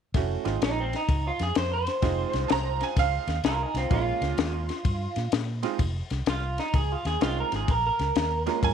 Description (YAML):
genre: electric blues shuffle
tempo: 127 BPM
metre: 4/4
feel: swing 66% on 8ths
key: F minor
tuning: A4 = 441 Hz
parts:
  - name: bright upright piano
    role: accompaniment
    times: 0.1-8.7 s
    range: Ab3 to Gb4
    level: -32 LUFS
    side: right 15 dB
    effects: none
  - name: vintage muted fingered electric bass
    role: bass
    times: 0.1-8.7 s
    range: F1 to Bb2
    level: -30 LUFS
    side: equal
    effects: none
  - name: compact cocktail drum kit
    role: drums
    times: 0.1-8.7 s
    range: kick drum, ride cymbal, snare drum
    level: -29 LUFS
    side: left 4 dB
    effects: none
  - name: electric guitar through a small old amp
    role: melody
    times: 0.6-8.7 s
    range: C4 to C5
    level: -29 LUFS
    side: right 3 dB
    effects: lush chorus
  - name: bright upright piano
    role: second line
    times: 2.5-3.4, 8.6-8.7 s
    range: F5 to Bb5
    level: -28 LUFS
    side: right 12 dB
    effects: none
room: light reverb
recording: 1960s-style stereo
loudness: -24 LUFS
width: side -8 dB against mid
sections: 0.1-8.7 A section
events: none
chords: 0.1 Fm7; 3.9 Bbm7; 5.8 Fm7; 7.7 Bbm7